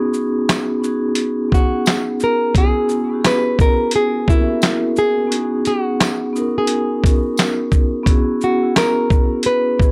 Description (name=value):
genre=lo-fi hip hop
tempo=87 BPM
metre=4/4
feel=swing 64% on 16ths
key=unclear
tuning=A4 = 440 Hz
part: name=vibraphone with soft mallets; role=accompaniment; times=0.0-9.9 s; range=A#3 to A#4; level=-22 LUFS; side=equal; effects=low-pass filter
part: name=dusty soul sampler-style drum kit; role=drums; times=0.1-9.9 s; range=handclaps, hi-hat, kick drum, shaker, snare drum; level=-18 LUFS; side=equal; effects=none
part: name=tambourine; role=percussion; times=0.5-9.0 s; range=none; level=-36 LUFS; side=equal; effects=none
part: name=nylon-string guitar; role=melody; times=1.5-9.9 s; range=E4 to B4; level=-21 LUFS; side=equal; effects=low-pass filter
room=light reverb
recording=dry, gritty hardware recording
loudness=-17 LUFS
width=mono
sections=0.0-9.9 A section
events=none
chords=0.0 B69; 2.5 F#9sus4; 5.3 B69; 8.1 F#9sus4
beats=0.48 1.17 1.86 | 2.55 3.24 3.93 4.62 | 5.31 6.00 6.69 7.38 | 8.06 8.76 9.44